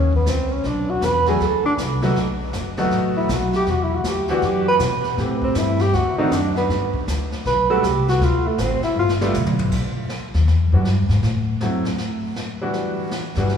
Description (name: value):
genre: jazz, small-group swing and bop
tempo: 159 BPM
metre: 4/4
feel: swing 64% on 8ths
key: unclear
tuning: A4 = 440 Hz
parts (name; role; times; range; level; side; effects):
- breathy tenor saxophone; melody; 0.0-9.1 s; A3 to B4; -21 LUFS; right 1 dB; none
- clear baby grand piano; accompaniment; 0.0-13.6 s; Eb3 to G4; -25 LUFS; equal; none
- upright bass; bass; 0.0-13.6 s; F#1 to B2; -21 LUFS; left 1 dB; none
- jazz brush drum kit; drums; 0.1-13.6 s; brushed snare drum, crash cymbal, hi-hat, kick drum, snare drum, toms; -29 LUFS; equal; none
room: wet church reverb, RT60 3.7 s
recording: recorded in a church or concert hall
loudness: -18 LUFS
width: side -7 dB against mid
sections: 0.0-9.7 A section; 9.7-13.6 A section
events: tenor saxophone solo 0.0-9.7; drum fill 9.0-9.7; upright bass solo 9.7-13.6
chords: 0.0 F#7 (rootless); 0.7 Bm7; 2.2 B7; 3.7 Em9; 5.2 Am9; 5.9 D7b9; 6.7 G; 8.2 D5; 9.0 G7; 9.7 Ebmaj7#5; 11.2 F#m7b5; 12.0 Bm7; 12.7 Em7